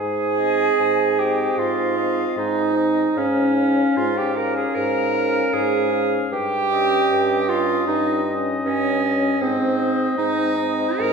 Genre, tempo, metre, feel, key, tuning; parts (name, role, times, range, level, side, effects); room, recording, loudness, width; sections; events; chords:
classical, slow romantic movement for wind quintet; 76 BPM; 4/4; rubato; Ab major; A4 = 440 Hz
mellow hollow silver concert flute; melody; 0.0-11.1 s; C5 to Bb5; -27 LUFS; left 4 dB
bright clarinet; accompaniment; 0.0-11.1 s; C4 to Bb4; -20 LUFS; right 4 dB
dark bassoon; bass; 0.0-11.1 s; G2 to Ab2; -25 LUFS; right 1 dB
mellow oboe; second line; 0.4-11.1 s; Eb5 to F5; -28 LUFS; left 3 dB
clear French horn; accompaniment; 0.4-11.1 s; C4 to Db4; -29 LUFS; left 4 dB
wet scoring stage reverb, RT60 1.8 s; heard from further back in the room; -18 LUFS; side -5 dB against mid
0.0-11.1 A section
0.0 Ab; 3.2 Db/Ab; 6.3 Eb7/G; 9.4 Ab